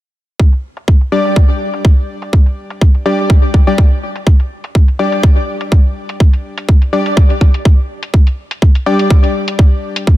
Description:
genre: bass house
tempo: 124 BPM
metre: 4/4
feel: swing 54% on 16ths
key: unclear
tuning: A4 = 440 Hz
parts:
  - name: electronic kick drum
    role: drums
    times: 0.4-10.2 s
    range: none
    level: -8 LUFS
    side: equal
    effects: none
  - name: electronic hi-hat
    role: drums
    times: 0.5-10.1 s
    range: none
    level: -24 LUFS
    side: left 1 dB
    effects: low-pass filter on hats
  - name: band-passed chord stab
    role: stabs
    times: 1.1-10.2 s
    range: G3 to D5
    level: -16 LUFS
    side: left 2 dB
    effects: chorus, sidechain pumping, digital delay
room: light reverb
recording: dense, heavily limited modern master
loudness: -10 LUFS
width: side -15 dB against mid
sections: 0.4-10.2 A section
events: filter sweep on drum 0.4-10.2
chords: 0.4 G5

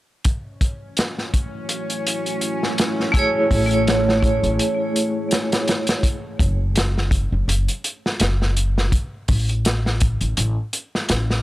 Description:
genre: trip hop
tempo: 83 BPM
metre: 4/4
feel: swing 56% on 16ths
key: F# minor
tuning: A4 = 440 Hz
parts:
  - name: deep dark ambient pad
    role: sustained chords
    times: 1.5-6.0 s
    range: A3 to C#5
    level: -27 LUFS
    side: right 1 dB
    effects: chorus, built-in reverb
  - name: crunchy breakbeat drum kit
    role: drums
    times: 0.2-11.4 s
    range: hi-hat, kick drum, snare drum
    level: -21 LUFS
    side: equal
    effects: none
  - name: bowed-like drone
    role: texture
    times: 0.7-6.1 s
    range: C#4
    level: -32 LUFS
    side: left 2 dB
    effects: built-in reverb, phaser
  - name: vibraphone with hard mallets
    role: accompaniment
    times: 3.1-6.1 s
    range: A3 to C#5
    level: -20 LUFS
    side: right 1 dB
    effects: tremolo, tape echo
  - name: upright bass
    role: bass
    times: 3.5-11.4 s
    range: F#1 to A1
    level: -20 LUFS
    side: equal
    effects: tube saturation
room: little or no reverb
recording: dry, gritty hardware recording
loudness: -18 LUFS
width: side -16 dB against mid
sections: 0.2-6.0 A section; 6.0-11.4 B section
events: break 4.6-6.0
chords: 0.2 F#m7; 3.1 Amaj7; 6.0 N.C.

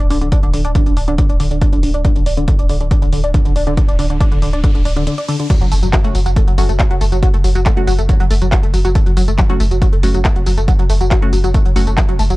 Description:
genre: driving peak-time techno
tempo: 139 BPM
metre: 4/4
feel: straight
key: F# minor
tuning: A4 = 439 Hz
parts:
  - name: tight sequenced synth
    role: riff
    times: 0.0-12.3 s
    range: D3 to D4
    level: -20 LUFS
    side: equal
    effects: chorus, phaser, tube saturation, sidechain pumping, analog delay
  - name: warm sub bass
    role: bass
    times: 0.0-12.4 s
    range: D1 to F#1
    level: -17 LUFS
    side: equal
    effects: overdrive, sidechain pumping, low-pass filter
  - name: techno drum kit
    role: drums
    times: 0.0-12.4 s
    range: crash cymbal, handclaps, hi-hat, tambourine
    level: -25 LUFS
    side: equal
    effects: sidechain pumping on hats, sidechain pumping on cymbals, sidechain pumping on perc
  - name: electronic kick drum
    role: drums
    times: 0.3-12.1 s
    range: none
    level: -14 LUFS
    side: equal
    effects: none
  - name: riser and impact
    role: sound effects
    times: 3.9-7.2 s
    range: none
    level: -31 LUFS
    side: equal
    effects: none
  - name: filtered dub chord stab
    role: stabs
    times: 6.0-11.9 s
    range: A3 to F#4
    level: -25 LUFS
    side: equal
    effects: phaser, sidechain pumping, analog delay
room: digital ambience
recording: dry, gritty hardware recording, cassette tape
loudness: -12 LUFS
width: side -19 dB against mid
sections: 0.0-5.5 A section; 5.5-12.4 B section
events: riser 3.9-5.5; break 5.1-5.5; drop 5.5-12.4; impact 5.5-7.2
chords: 0.0 N.C.; 5.5 F#m

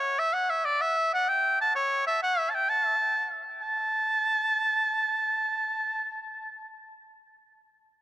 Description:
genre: medieval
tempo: 128 BPM (dotted quarters)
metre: 6/8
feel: straight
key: A mixolydian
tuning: A4 = 436 Hz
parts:
  - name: bright shawm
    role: solo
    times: 0.0-6.2 s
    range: C#5 to A5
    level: -25 LUFS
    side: equal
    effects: analog delay
room: light reverb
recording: echo-heavy mix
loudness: -24 LUFS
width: side -14 dB against mid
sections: 0.0-3.6 A section; 3.6-5.5 B section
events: none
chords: none

